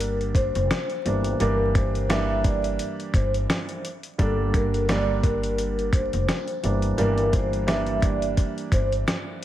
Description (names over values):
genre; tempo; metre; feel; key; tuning
hip hop, boom-bap hip-hop; 86 BPM; 4/4; swing 56% on 16ths; G dorian; A4 = 440 Hz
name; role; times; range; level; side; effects
vibraphone with soft mallets; melody; 0.0-8.9 s; A4 to E5; -27 LUFS; left 1 dB; high-pass filter, low-pass filter, analog delay
dark upright piano; accompaniment; 0.0-9.4 s; D3 to D4; -28 LUFS; right 3 dB; cassette tape, high-pass filter, low-pass filter
upright bass; bass; 0.0-9.0 s; F1 to G1; -26 LUFS; equal; none
dusty soul sampler-style drum kit; drums; 0.0-9.4 s; hi-hat, kick drum, rim click, snare drum; -25 LUFS; equal; none
room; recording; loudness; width
light reverb, small room ambience; vinyl crackle; -21 LUFS; side -12 dB against mid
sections
0.0-9.4 A section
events
none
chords
0.0 Gm; 1.1 Gm6; 4.2 Gm; 6.6 Gm6